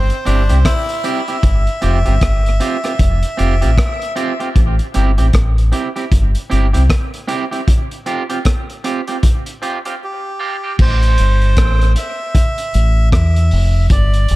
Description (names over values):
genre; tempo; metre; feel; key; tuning
dub reggae; 77 BPM; 4/4; swing 61% on 16ths; A minor; A4 = 440 Hz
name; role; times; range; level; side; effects
melodica; melody; 0.0-4.1, 10.0-14.4 s; G4 to E5; -22 LUFS; right 1 dB; tape echo
growling tenor saxophone; second line; 0.0-1.2 s; C4 to E4; -24 LUFS; left 3 dB; tape echo
deep dub fingered electric bass; bass; 0.0-14.4 s; F1 to E2; -13 LUFS; equal; none
crunchy breakbeat drum kit; drums; 0.1-14.4 s; crash cymbal, hi-hat, kick drum, rim click; -16 LUFS; equal; none
electric guitar at the edge of break-up; accompaniment; 0.3-10.7 s; C4 to G4; -22 LUFS; right 4 dB; high-pass filter, tape echo
room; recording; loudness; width
studio reverb; echo-heavy mix; -13 LUFS; side -18 dB against mid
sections
0.0-10.8 A section; 10.8-14.4 B section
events
break 7.7-10.8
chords
0.0 Am7 (rootless); 1.4 G7sus4; 4.6 Am7; 7.7 G7sus4; 10.8 Am7